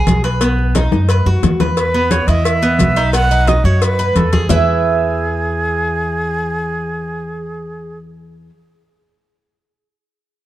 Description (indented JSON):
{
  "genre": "latin, Cuban son and guajira",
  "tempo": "176 BPM",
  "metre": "4/4",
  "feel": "straight",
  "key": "E major",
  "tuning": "A4 = 442 Hz",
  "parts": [
    { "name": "Cuban tres", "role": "arpeggios", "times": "0.0-8.5 s", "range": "B3 to E5", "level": "-19 LUFS", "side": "right 3 dB", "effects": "none" },
    { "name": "upright bass", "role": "bass", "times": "0.0-8.5 s", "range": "B1 to F#2", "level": "-17 LUFS", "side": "equal", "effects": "none" },
    { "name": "congas", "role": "percussion", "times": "0.1-4.6 s", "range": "none", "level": "-19 LUFS", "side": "left 1 dB", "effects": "none" },
    { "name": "cowbell and bongos", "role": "percussion", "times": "0.1-4.6 s", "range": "none", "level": "-22 LUFS", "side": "left 4 dB", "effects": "none" },
    { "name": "maracas", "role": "percussion", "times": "0.1-4.6 s", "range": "none", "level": "-29 LUFS", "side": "left 6 dB", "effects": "none" },
    { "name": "breathy bright jazz flute", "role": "second line", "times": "1.8-8.0 s", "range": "G#4 to F#5", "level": "-19 LUFS", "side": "right 2 dB", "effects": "none" }
  ],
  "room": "little or no reverb",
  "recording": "dark, warm production",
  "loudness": "-13 LUFS",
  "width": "side -14 dB against mid",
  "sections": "0.0-1.8 A section; 1.8-4.5 B section; 4.5-7.2 C section",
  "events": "drum fill 0.9-1.8",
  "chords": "0.4 B; 1.8 E5; 3.1 B7; 4.5 E"
}